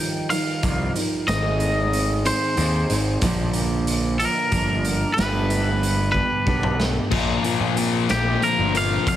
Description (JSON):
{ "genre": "quiet-loud alternative rock", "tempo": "62 BPM (dotted quarters)", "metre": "6/8", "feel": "straight", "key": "unclear", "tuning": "A4 = 440 Hz", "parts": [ { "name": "twangy electric guitar", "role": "melody", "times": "0.0-9.2 s", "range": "G4 to G5", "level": "-24 LUFS", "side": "equal", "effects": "digital delay" }, { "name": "fingerpicked steel-string acoustic guitar", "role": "arpeggios", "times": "0.0-9.2 s", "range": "G2 to Bb4", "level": "-26 LUFS", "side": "right 2 dB", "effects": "none" }, { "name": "raw garage drum kit", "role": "drums", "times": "0.3-9.2 s", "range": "crash cymbal, hi-hat, kick drum, snare drum, toms", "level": "-26 LUFS", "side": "equal", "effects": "none" }, { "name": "fuzz picked electric bass", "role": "bass", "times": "0.6-9.2 s", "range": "F1 to Bb2", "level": "-24 LUFS", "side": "equal", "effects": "overdrive" }, { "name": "thick fuzz guitar", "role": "riff", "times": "7.1-9.2 s", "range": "F2 to Bb3", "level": "-23 LUFS", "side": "left 11 dB", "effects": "distortion" } ], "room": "studio ambience", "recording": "heavily compressed radio sound", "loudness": "-19 LUFS", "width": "side -12 dB against mid", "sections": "0.0-7.1 A section; 7.1-9.2 B section", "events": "half time 0.0-7.1; drum fill 6.2-7.1; clean electric guitar solo 7.1-9.2", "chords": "0.0 Ebadd9; 1.3 Ab; 3.2 Bb; 5.2 G; 7.1 Bbadd9" }